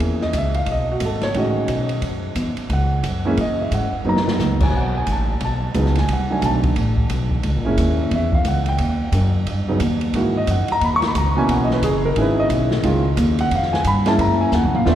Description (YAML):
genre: jazz, small-group swing and bop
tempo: 178 BPM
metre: 4/4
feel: swing 63% on 8ths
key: F# mixolydian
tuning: A4 = 441 Hz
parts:
  - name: warm concert grand piano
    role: accompaniment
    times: 0.0-14.9 s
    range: B2 to C#6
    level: -20 LUFS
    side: right 1 dB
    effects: none
  - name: upright bass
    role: bass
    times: 0.0-14.9 s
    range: F#1 to A#2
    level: -20 LUFS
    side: equal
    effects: none
  - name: open jazz drum kit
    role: drums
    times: 0.0-14.9 s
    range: crash cymbal, hi-hat, kick drum, ride cymbal, snare drum, toms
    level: -26 LUFS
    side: equal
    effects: none
room: wet church reverb, RT60 3.7 s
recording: recorded in a church or concert hall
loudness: -17 LUFS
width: side -11 dB against mid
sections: 0.0-14.9 A section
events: drum fill 4.1-4.4, 14.5-14.9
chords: 0.0 F#7 (rootless); 0.7 B7; 2.0 F#7; 4.7 B7; 6.1 Cdim7; 7.4 F#7; 8.8 D#(#9); 10.1 G#m7; 12.8 C#; 14.2 F#7